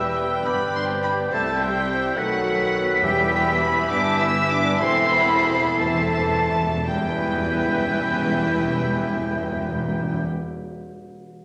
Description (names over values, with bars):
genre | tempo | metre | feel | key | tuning
quick classical-period movement for symphony orchestra | 53-71 BPM (dotted quarters) | 6/8 | rubato | E minor | A4 = 440 Hz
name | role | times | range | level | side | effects
warm chamber violin section | melody | 0.0-10.2 s | E5 to E6 | -31 LUFS | equal | none
clear clarinet | second line | 0.0-10.2 s | E4 to C5 | -32 LUFS | equal | none
mellow hollow concert flute | second line | 0.0-10.2 s | E6 to C7 | -27 LUFS | equal | none
warm chamber violin section | second line | 0.0-10.2 s | G4 to G5 | -34 LUFS | equal | none
warm cor anglais | second line | 0.0-10.2 s | B4 to F#5 | -33 LUFS | equal | none
mellow bassoon | accompaniment | 0.0-10.2 s | D#3 to G3 | -34 LUFS | equal | none
warm chamber viola section | accompaniment | 0.0-10.2 s | A3 to A4 | -34 LUFS | equal | none
dark French horn section | sustained chords | 0.0-10.2 s | E3 to E4 | -32 LUFS | equal | none
warm chamber cello section | bass | 0.0-10.2 s | E2 to E3 | -35 LUFS | equal | none
warm chamber double bass section | bass | 0.0-10.2 s | E1 to E2 | -34 LUFS | equal | none
timpani | percussion | 0.0-0.4, 3.0-10.3 s | E2 | -32 LUFS | equal | none
room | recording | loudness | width
wet scoring stage reverb, RT60 1.8 s | none | -22 LUFS | mono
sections
0.0-6.9 A section; 6.9-11.2 B section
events
slowing down 2.2-6.9; timpani fill 4.8-6.9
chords
0.5 G; 1.3 C; 2.2 B7; 3.0 Em; 4.8 Am/E; 6.9 Em